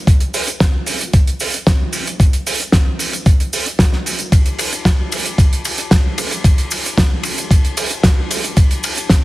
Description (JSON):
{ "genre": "nu-disco", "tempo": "113 BPM", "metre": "4/4", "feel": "straight", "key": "none", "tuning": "none", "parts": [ { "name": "damped 70s drum kit", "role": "drums", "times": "0.1-9.2 s", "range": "cabasa, hi-hat, ride cymbal, snare drum", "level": "-18 LUFS", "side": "right 1 dB", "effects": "studio reverb" }, { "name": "electronic kick drum", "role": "drums", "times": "0.1-9.2 s", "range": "none", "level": "-12 LUFS", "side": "equal", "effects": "studio reverb" } ], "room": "light reverb", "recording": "heavily compressed radio sound", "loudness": "-13 LUFS", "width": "side -18 dB against mid", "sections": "0.0-9.2 A section", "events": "none", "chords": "none" }